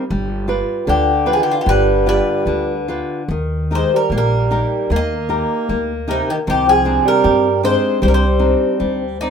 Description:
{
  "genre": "fado-style ballad",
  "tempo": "76 BPM",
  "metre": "2/4",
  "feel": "rubato",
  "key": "C minor",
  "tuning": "A4 = 439 Hz",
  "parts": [
    { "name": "flamenco guitar", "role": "accompaniment", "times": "0.0-9.3 s", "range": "C3 to D5", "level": "-21 LUFS", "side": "equal", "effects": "none" },
    { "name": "upright bass", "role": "bass", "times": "0.1-9.3 s", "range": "G1 to G2", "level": "-21 LUFS", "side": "equal", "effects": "none" },
    { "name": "Greek bouzouki", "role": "melody", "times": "0.9-9.3 s", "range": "Eb4 to Eb5", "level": "-18 LUFS", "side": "left 2 dB", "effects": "none" },
    { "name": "breathy tenor saxophone", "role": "second line", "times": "0.9-9.2 s", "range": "C3 to Bb3", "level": "-20 LUFS", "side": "right 4 dB", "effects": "none" }
  ],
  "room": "moderate studio reverb, RT60 0.6 s",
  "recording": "minimal, uncompressed stereo recording",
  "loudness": "-14 LUFS",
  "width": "side -7 dB against mid",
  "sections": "0.0-9.3 A section",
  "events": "none",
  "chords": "0.1 G7; 3.3 Eb; 6.5 Cmadd9",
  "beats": "| 0.11 0.88 | 1.67 2.47 | 3.30 4.11 | 4.90 5.69 | 6.46 7.24 | 8.01 8.79"
}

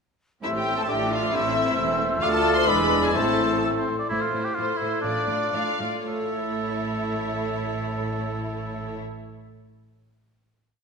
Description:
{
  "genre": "quick classical-period movement for symphony orchestra",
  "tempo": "107-138 BPM",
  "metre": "2/4",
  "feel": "rubato",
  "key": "A minor",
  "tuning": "A4 = 440 Hz",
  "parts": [
    { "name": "warm studio violin section", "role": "melody", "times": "0.4-9.0 s", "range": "C5 to C6", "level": "-30 LUFS", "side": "left 4 dB", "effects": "none" },
    { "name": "clear clarinet", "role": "second line", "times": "0.4-3.9 s", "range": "E4 to A4", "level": "-31 LUFS", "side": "left 4 dB", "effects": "none" },
    { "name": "silver concert flute", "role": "second line", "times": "0.4-3.9 s", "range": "D6 to F6", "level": "-29 LUFS", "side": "left 2 dB", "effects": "none" },
    { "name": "warm oboe", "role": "second line", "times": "0.4-9.0 s", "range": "D4 to D5", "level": "-30 LUFS", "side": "right 2 dB", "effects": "none" },
    { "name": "warm studio violin section", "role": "second line", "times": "0.4-9.0 s", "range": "E4 to F5", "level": "-30 LUFS", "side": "left 3 dB", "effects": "none" },
    { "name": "warm bassoon", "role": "accompaniment", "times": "0.4-3.9 s", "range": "G#3 to A3", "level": "-29 LUFS", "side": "right 1 dB", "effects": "none" },
    { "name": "warm studio viola section", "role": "accompaniment", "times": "0.4-9.0 s", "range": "C3 to F4", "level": "-31 LUFS", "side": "right 1 dB", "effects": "none" },
    { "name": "mellow French horn section", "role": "sustained chords", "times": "0.4-3.9 s", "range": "G#3 to F4", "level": "-31 LUFS", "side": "left 1 dB", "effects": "none" },
    { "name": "rich studio cello section", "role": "bass", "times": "0.4-9.0 s", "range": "D2 to A2", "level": "-33 LUFS", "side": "right 2 dB", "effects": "none" },
    { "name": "warm studio double bass section", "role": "bass", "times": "0.4-9.0 s", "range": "E1 to D2", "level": "-35 LUFS", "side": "right 3 dB", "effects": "none" }
  ],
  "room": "wet scoring stage reverb, RT60 1.5 s",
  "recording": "minimal, uncompressed stereo recording",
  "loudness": "-22 LUFS",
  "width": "side -5 dB against mid",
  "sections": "0.4-4.1 A section; 4.1-6.1 coda; 6.1-8.2 final chord",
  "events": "slowing down 3.6-6.1",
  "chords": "0.4 Am; 0.9 Dm/A; 1.3 Am; 2.2 Dm; 2.7 E7; 3.1 Am; 5.0 Dm/A; 6.1 A",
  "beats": "| 0.43 0.89 | 1.34 1.78 | 2.22 2.67 | 3.15 3.63 | 4.11 4.57 | 5.04 5.53 | 6.08 6.61 | 7.14 7.67"
}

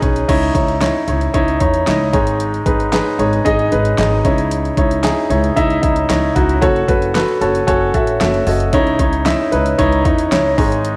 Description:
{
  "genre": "piano-driven pop",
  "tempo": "114 BPM",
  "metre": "4/4",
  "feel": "straight",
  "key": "C# minor",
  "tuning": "A4 = 440 Hz",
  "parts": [
    { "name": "warm baby grand piano", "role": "accompaniment", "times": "0.0-11.0 s", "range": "G#2 to A5", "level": "-17 LUFS", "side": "equal", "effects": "cassette tape" },
    { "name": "upright bass", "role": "bass", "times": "0.0-11.0 s", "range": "F#1 to E2", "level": "-22 LUFS", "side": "equal", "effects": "none" },
    { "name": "pop drum kit", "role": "drums", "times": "0.0-11.0 s", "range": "crash cymbal, handclaps, hi-hat, kick drum, snare drum", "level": "-22 LUFS", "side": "equal", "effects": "overdrive, cassette tape" }
  ],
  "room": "light reverb",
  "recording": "home recording on cassette",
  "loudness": "-15 LUFS",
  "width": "mono",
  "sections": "0.3-11.0 A section",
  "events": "grand piano fill 7.2-8.7",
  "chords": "0.3 C#madd9; 2.1 G#sus4; 4.2 C#madd9; 6.6 F#m; 8.7 C#madd9",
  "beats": "| 0.29 0.82 1.35 1.87 | 2.40 2.93 3.46 3.98 | 4.51 5.04 5.57 6.09 | 6.62 7.15 7.68 8.21 | 8.73 9.26 9.79 10.32 | 10.84"
}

